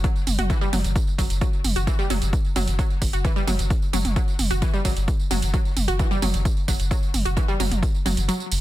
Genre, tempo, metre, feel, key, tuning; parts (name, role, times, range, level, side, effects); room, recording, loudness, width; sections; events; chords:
driving peak-time techno; 131 BPM; 4/4; straight; A4 = 440 Hz
wide unison pluck; riff; 0.0-8.4 s; E3 to F#4; -28 LUFS; equal; sidechain pumping, ping-pong delay
saturated sub bass; bass; 0.0-8.6 s; F#1; -24 LUFS; equal; tube saturation, sidechain pumping, low-pass filter
electronic kick drum; drums; 0.0-7.9 s; -22 LUFS; equal
techno drum kit; drums; 0.0-8.6 s; hi-hat, tambourine, toms; -28 LUFS; right 3 dB
digital ambience; dense, heavily limited modern master; -20 LUFS; side -15 dB against mid
0.0-8.6 A section
kick drops out 8.3-8.6